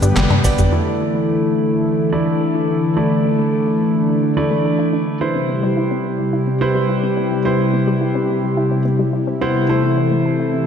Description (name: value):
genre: synthwave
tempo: 107 BPM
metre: 4/4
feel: straight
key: unclear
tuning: A4 = 440 Hz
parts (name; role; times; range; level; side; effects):
- warm analog pad; sustained chords; 0.0-10.7 s; C3 to B4; -17 LUFS; left 1 dB; chorus, vintage 12-bit sampler grit, sidechain pumping
- analog pluck; arpeggios; 0.0-10.6 s; G3 to A4; -28 LUFS; left 3 dB; none
- tight sequencer bass; bass; 0.0-0.7 s; G1 to G2; -16 LUFS; equal; none
- detuned 8-bit digital drum machine; drums; 0.0-0.7 s; cabasa, handclaps, hi-hat, snare drum, toms; -20 LUFS; equal; none
- warm concert grand piano; stabs; 0.4-10.7 s; A3 to D5; -22 LUFS; right 2 dB; low-pass filter, ping-pong delay
- electronic kick drum; drums; 0.4-0.6 s; none; -22 LUFS; equal; none
room: wet lush hall reverb, RT60 2.3 s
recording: dreamy mix soaked in reverb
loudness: -15 LUFS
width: side -7 dB against mid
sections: 0.7-10.7 A section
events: drum fill 0.2-0.7; band accent 0.2; filter sweep on grand piano 0.7-10.7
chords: 0.0 G; 0.7 Dsus2; 5.2 Cmaj7; 9.7 Am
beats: 0.16 | 0.72 1.28 1.84 2.41 | 2.97 3.53 4.09 4.65 | 5.21 5.77 6.33 6.89 | 7.45 8.01 8.57 9.13 | 9.70 10.26